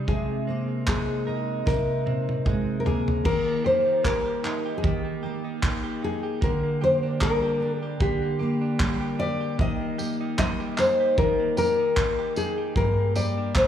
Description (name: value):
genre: acoustic pop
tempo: 76 BPM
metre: 4/4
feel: swing 55% on 16ths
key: unclear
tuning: A4 = 444 Hz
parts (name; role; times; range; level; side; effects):
- fingerpicked steel-string acoustic guitar; accompaniment; 0.0-13.7 s; G2 to G4; -28 LUFS; equal; double-tracked left and right, slapback echo
- direct-recorded clean electric guitar; arpeggios; 0.0-13.7 s; Ab3 to Bb4; -36 LUFS; right 6 dB; spring reverb, slapback echo, digital delay
- nylon-string guitar; melody; 0.1-13.7 s; G4 to Eb5; -25 LUFS; left 2 dB; slapback echo
- loose indie drum kit; drums; 0.1-13.7 s; crash cymbal, handclaps, kick drum, snare drum, tambourine, toms; -27 LUFS; right 1 dB; none
room: moderate lush hall reverb, RT60 2.3 s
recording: live gig heard through the venue's PA, club reverb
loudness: -22 LUFS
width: side -10 dB against mid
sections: 0.0-3.3 A section; 3.3-13.7 B section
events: drum fill 1.7-3.3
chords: 0.1 Abadd9/C; 3.3 Eb; 6.4 Gm/D; 9.6 Eb; 12.8 Gm